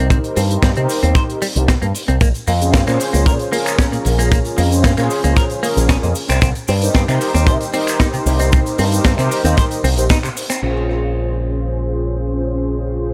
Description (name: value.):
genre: nu-disco, nu disco.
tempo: 114 BPM.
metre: 4/4.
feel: straight.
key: Bb dorian.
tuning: A4 = 440 Hz.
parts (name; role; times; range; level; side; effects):
mellow synth brass; accompaniment; 0.0-13.1 s; Db4 to C5; -23 LUFS; equal; chorus, sidechain pumping, analog delay.
direct-recorded clean electric guitar; riff; 0.0-10.6 s; Bb2 to C5; -26 LUFS; equal; subtle chorus, analog delay.
picked electric bass with an envelope filter; bass; 0.0-13.1 s; Bb1 to C3; -19 LUFS; equal; sidechain pumping.
kick drum; drums; 0.1-10.2 s; none; -17 LUFS; equal; none.
tight funk drum kit; drums; 0.1-10.7 s; crash cymbal, finger snaps, hi-hat, shaker, snare drum; -26 LUFS; equal; low-pass filter on hats, low-pass filter on cymbals, low-pass filter on snare, low-pass filter on perc, low-pass filter on room, analog delay.
cabasa; percussion; 0.1-10.6 s; none; -35 LUFS; equal; none.
room: light reverb, small room reverb.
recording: echo-heavy mix.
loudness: -16 LUFS.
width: mono.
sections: 0.0-10.6 A section; 10.6-13.1 B section.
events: none.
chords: 0.0 Cm7; 2.2 Bbm9; 6.2 Cm7; 10.6 Bbm9.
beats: | 0.10 0.63 1.16 1.68 | 2.21 2.74 3.26 3.79 | 4.32 4.84 5.37 5.89 | 6.42 6.95 7.47 8.00 | 8.53 9.05 9.58 10.10 | 10.63 11.16 11.68 12.21 | 12.74.